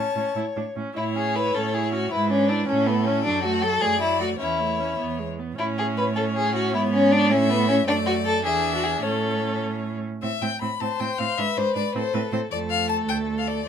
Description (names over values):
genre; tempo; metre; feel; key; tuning
quick classical-period movement for string quartet; 104 BPM (dotted quarters); 6/8; straight; A major, A minor from 10.2 s; A4 = 441 Hz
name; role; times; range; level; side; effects
rich violin; melody; 0.0-13.7 s; A4 to B5; -28 LUFS; left 8 dB; none
clear violin; second line; 0.0-13.6 s; B3 to C#5; -24 LUFS; left 2 dB; none
clear viola; accompaniment; 0.0-13.7 s; F#3 to E4; -30 LUFS; right 4 dB; none
rich cello; bass; 0.0-13.7 s; D2 to A2; -28 LUFS; right 5 dB; none
room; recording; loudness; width
light reverb; minimal, uncompressed stereo recording; -21 LUFS; side -8 dB against mid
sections
1.0-10.2 A section; 10.2-13.7 A section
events
none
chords
0.0 A; 2.1 E7/G#; 2.7 A; 3.3 D/F#; 4.4 A/E; 5.0 E; 5.6 A; 6.7 G#madd11; 7.3 A5; 7.9 D/F#; 8.4 E7; 9.0 A; 10.2 Am; 11.4 E7b13; 11.9 Am; 12.5 Dm/F